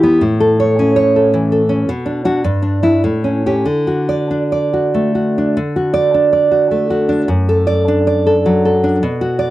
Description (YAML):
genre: romantic piece for solo classical guitar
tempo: 92-111 BPM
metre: 3/4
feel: rubato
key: D major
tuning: A4 = 439 Hz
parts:
  - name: nylon-string guitar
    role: solo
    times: 0.0-9.5 s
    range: F#2 to D5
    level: -12 LUFS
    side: equal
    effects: none
room: light reverb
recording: dry, close 1970s-style studio recording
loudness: -12 LUFS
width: side -15 dB against mid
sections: 0.0-5.6 A section; 5.6-9.5 A section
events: none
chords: 0.2 A; 1.9 Bm; 2.4 Em7/G; 3.0 A7; 3.7 D; 7.3 D/F#